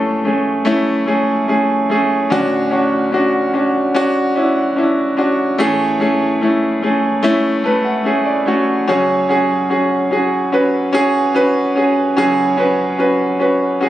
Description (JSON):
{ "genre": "pop", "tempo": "73 BPM", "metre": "4/4", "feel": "straight", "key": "F# minor", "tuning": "A4 = 440 Hz", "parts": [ { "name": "bright concert grand piano", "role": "solo", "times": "0.0-13.9 s", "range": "D2 to A5", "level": "-13 LUFS", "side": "equal", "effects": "analog delay" } ], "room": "moderate echo chamber reverb, RT60 1.4 s", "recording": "recorded on a phone in the room, club reverb", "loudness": "-13 LUFS", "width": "side -13 dB against mid", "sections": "0.0-8.9 A section; 8.9-13.9 B section", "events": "grand piano fill 7.2-8.9", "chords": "0.0 Amaj7; 2.3 Dmaj7; 5.6 Amaj7; 8.9 F#sus2", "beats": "0.66 1.48 | 2.30 3.13 3.95 4.77 | 5.59 6.41 7.24 8.06 | 8.88 9.70 10.52 11.35 | 12.17 12.99 13.81" }